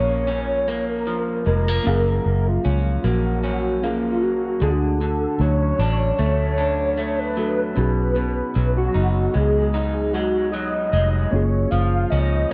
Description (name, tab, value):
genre	indie pop, bedroom pop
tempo	76 BPM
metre	4/4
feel	swing 55% on 16ths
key	F# major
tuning	A4 = 441 Hz
part	soft octave-layered synth lead	melody	0.0-12.5 s	E#4 to E#5	-26 LUFS	equal	ensemble chorus, tape echo
part	electric guitar through a small old amp	accompaniment	0.0-12.5 s	F#2 to D#4	-28 LUFS	equal	subtle chorus, warbly pitch drift
part	reed electric piano	accompaniment	0.0-12.5 s	A3 to E#5	-31 LUFS	equal	cassette tape
part	vintage muted fingered electric bass	bass	0.0-12.4 s	E#1 to D2	-24 LUFS	equal	none
room	light reverb, digital ambience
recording	dark, warm production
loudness	-21 LUFS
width	mono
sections	0.0-12.5 A section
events	none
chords	0.0 F#maj7; 4.6 D; 7.8 B6; 11.3 F#maj7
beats	0.28 1.07 | 1.86 2.65 3.44 4.23 | 5.01 5.80 6.59 7.38 | 8.17 8.96 9.75 10.54 | 11.33 12.12